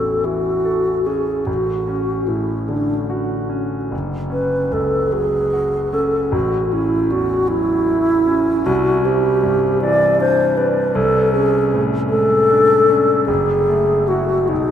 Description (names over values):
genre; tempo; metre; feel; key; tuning
classical, impressionist duo for alto flute and grand piano; 47-54 BPM (dotted quarters); 6/8; rubato; unclear; A4 = 440 Hz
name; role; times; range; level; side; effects
mellow alto flute; melody; 0.0-14.7 s; D4 to D5; -16 LUFS; equal; none
clear concert grand piano; accompaniment; 0.0-14.7 s; F#1 to A4; -21 LUFS; equal; none
room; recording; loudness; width
wet cathedral reverb, RT60 5.3 s; in a vast, echoing space; -15 LUFS; side -9 dB against mid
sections
0.0-14.7 A section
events
none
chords
0.0 A6; 1.5 Dmaj7/A; 3.9 F#sus2; 6.3 A6; 8.7 Cadd9; 11.0 D5/C; 13.3 F#m9